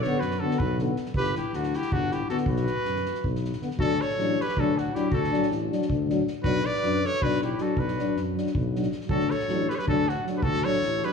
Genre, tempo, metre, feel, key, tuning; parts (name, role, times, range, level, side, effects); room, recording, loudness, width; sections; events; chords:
balkan folk, Balkan brass band; 317 BPM (eighths); 7/8; straight; A4 = 440 Hz
clear trumpet; melody; 0.0-11.1 s; F#4 to D5; -30 LUFS; right 1 dB
clear clarinet; second line; 0.0-11.1 s; D4 to B4; -33 LUFS; left 6 dB
clear euphonium; accompaniment; 0.0-11.1 s; B3 to D4; -30 LUFS; left 10 dB
dark euphonium; accompaniment; 0.0-11.1 s; D3 to F#3; -33 LUFS; right 8 dB
warm tuba; bass; 0.0-11.0 s; G1 to F#2; -30 LUFS; left 1 dB
soft-mallet drum kit; percussion; 0.0-11.1 s; kick drum, snare drum; -32 LUFS; equal
moderate concert hall reverb, RT60 1.9 s; -24 LUFS; side -6 dB against mid
0.0-3.8 A section; 3.8-11.1 B section
0.0 Bm; 1.2 G; 2.5 B5; 3.8 D; 6.4 Bm; 9.1 D